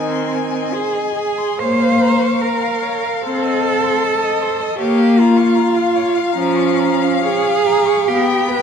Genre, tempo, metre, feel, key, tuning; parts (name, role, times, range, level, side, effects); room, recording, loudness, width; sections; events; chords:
classical, slow romantic movement for string quartet; 64-78 BPM; 4/4; rubato; A4 = 440 Hz
rich violin; melody; 0.0-8.6 s; Eb5 to Ab5; -26 LUFS; left 11 dB
rich violin; second line; 0.0-8.6 s; C5 to Db6; -23 LUFS; left 8 dB
rich viola; accompaniment; 0.0-8.6 s; Eb3 to C4; -18 LUFS; left 2 dB
warm cello; bass; 0.0-8.6 s; C4 to C5; -17 LUFS; right 5 dB
wet concert hall reverb, RT60 2.4 s; dark, warm production; -14 LUFS; side -7 dB against mid
0.0-8.6 A section
0.0 Ab; 1.6 Bbm; 3.2 Adim/C; 4.8 Bbm; 8.1 G7/B